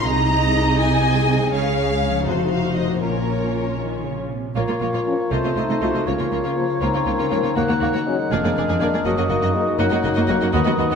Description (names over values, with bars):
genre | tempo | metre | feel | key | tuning
classical | 80 BPM (dotted quarters) | 6/8 | straight | Bb minor | A4 = 440 Hz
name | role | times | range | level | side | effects
warm symphonic violin section | melody | 0.0-11.0 s | Bb4 to Bb5 | -26 LUFS | left 2 dB | none
rich symphonic violin section | second line | 0.0-11.0 s | F4 to F5 | -29 LUFS | left 3 dB | none
warm symphonic viola section | accompaniment | 0.0-11.0 s | A3 to Ab4 | -26 LUFS | right 1 dB | none
concert harp | arpeggios | 0.0-11.0 s | F2 to Bb5 | -25 LUFS | left 7 dB | none
dark studio cello section | bass | 0.0-11.0 s | Eb2 to Eb3 | -26 LUFS | right 4 dB | none
warm symphonic double bass section | bass | 0.0-10.8 s | F1 to Eb2 | -27 LUFS | right 3 dB | none
clear oboe | second line | 4.6-11.0 s | C5 to Gb5 | -28 LUFS | right 1 dB | none
warm clarinet | second line | 4.6-11.0 s | D4 to Gb4 | -27 LUFS | left 2 dB | none
clear bassoon | accompaniment | 4.6-11.0 s | Gb3 to C4 | -26 LUFS | right 2 dB | none
dark French horn section | sustained chords | 5.1-10.4 s | F3 to Eb4 | -29 LUFS | left 4 dB | none
room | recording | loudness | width
wet scoring stage reverb, RT60 1.7 s | none | -18 LUFS | side -6 dB against mid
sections
0.0-4.6 A section; 4.6-11.0 B section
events
none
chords
0.1 Ab/C; 1.5 Db; 2.3 F7b9; 3.0 Bbm; 5.3 F7/C; 6.1 Bbm/Db; 7.6 Ebm7; 8.3 Bb7/F; 9.1 Ebm/Gb